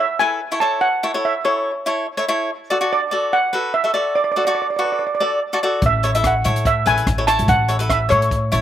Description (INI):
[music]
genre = calypso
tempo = 144 BPM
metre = 4/4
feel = swing 54% on 16ths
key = A major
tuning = A4 = 440 Hz
[part]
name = steel pan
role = melody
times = 0.0-8.6 s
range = C#5 to A5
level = -19 LUFS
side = right 2 dB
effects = none
[part]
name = cavaquinho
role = accompaniment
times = 0.0-8.6 s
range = E4 to E5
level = -21 LUFS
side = left 1 dB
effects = slapback echo
[part]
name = upright bass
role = bass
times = 5.8-8.6 s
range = G#1 to A2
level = -20 LUFS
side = left 1 dB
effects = none
[part]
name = compact cocktail drum kit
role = drums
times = 5.8-8.6 s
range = hi-hat, kick drum, rim click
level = -24 LUFS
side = left 1 dB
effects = none
[sound]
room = little or no reverb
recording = recorded outdoors, with no room sound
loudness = -16 LUFS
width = side -10 dB against mid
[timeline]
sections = 0.0-8.6 A section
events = none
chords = 0.0 A; 2.5 D; 5.8 A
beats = 0.01 0.42 | 0.84 1.25 1.67 2.08 | 2.50 2.91 3.33 3.74 | 4.16 4.58 4.99 5.41 | 5.82 6.24 6.65 7.07 | 7.49 7.90 8.32